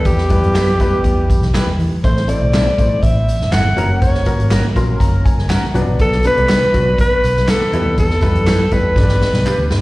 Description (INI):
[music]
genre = uptempo 1960s-style soul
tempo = 121 BPM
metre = 4/4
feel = straight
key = unclear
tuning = A4 = 442 Hz
[part]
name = breathy alto saxophone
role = melody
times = 0.0-9.7 s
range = G4 to F#5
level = -18 LUFS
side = equal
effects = slapback echo
[part]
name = warm upright piano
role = accompaniment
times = 0.0-9.8 s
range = F#3 to C6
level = -22 LUFS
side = left 2 dB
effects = slapback echo
[part]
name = vintage muted fingered electric bass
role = bass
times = 0.0-9.8 s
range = E1 to E3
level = -17 LUFS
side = equal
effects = none
[part]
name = swinging big-band drum kit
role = drums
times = 0.0-9.8 s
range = hi-hat, kick drum, snare drum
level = -17 LUFS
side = equal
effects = none
[part]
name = tambourine and handclaps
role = percussion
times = 0.1-9.6 s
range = none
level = -34 LUFS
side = right 2 dB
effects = slapback echo
[part]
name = electric guitar through a small old amp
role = stabs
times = 0.5-9.6 s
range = C4 to B4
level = -25 LUFS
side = right 3 dB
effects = analog chorus, slapback echo
[sound]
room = little or no reverb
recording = live gig heard through the venue's PA, recital hall reverb, vinyl crackle, lossy compression artefacts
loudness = -12 LUFS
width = side -19 dB against mid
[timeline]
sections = 0.0-9.8 A section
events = upright piano fill 4.5-6.0; drum fill 9.0-9.8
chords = 0.0 Em; 2.0 Am; 3.8 F#; 5.8 Bm; 7.7 Em; 9.0 G